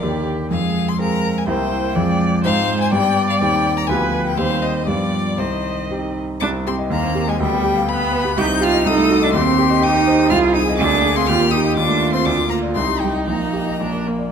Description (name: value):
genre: quick classical-period movement for piano quartet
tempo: 123 BPM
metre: 2/4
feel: rubato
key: C minor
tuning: A4 = 440 Hz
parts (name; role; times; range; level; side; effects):
- clear violin; melody; 0.0-14.0 s; C5 to G6; -23 LUFS; left 10 dB; none
- rich cello; second line; 0.0-14.0 s; D3 to G4; -22 LUFS; right 5 dB; none
- clear viola; accompaniment; 0.0-14.3 s; G3 to Eb5; -24 LUFS; right 1 dB; none
- warm grand piano; accompaniment; 0.0-14.3 s; Bb1 to G5; -19 LUFS; equal; none
room: wet recital hall reverb, RT60 1.3 s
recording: none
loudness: -16 LUFS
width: side -7 dB against mid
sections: 0.0-6.4 A section; 6.4-14.3 B section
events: none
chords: 0.0 Eb; 0.5 Fm; 1.5 C7; 2.0 Fm; 2.4 Fm/Ab; 2.9 G; 3.4 Cm/Eb; 3.9 G7/D; 4.4 Cm/Eb; 4.9 G7; 5.4 Cm; 6.9 Cm/Eb; 7.4 G7/D; 8.4 Cm; 8.9 Cdim7; 9.4 Cm/Eb; 10.3 Ab/C; 10.8 Bb7/D; 11.3 Eb; 11.8 F7/Eb; 12.3 Bb/D; 12.8 Cm; 13.3 Eb/Bb; 13.8 Bb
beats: 0.04 | 0.52 1.00 | 1.48 1.96 | 2.44 2.92 | 3.40 3.88 | 4.37 4.87 | 5.39 5.91 | 6.42 6.92 | 7.41 7.90 | 8.39 8.87 | 9.35 9.83 | 10.31 10.79 | 11.28 11.77 | 12.26 12.76 | 13.28 13.80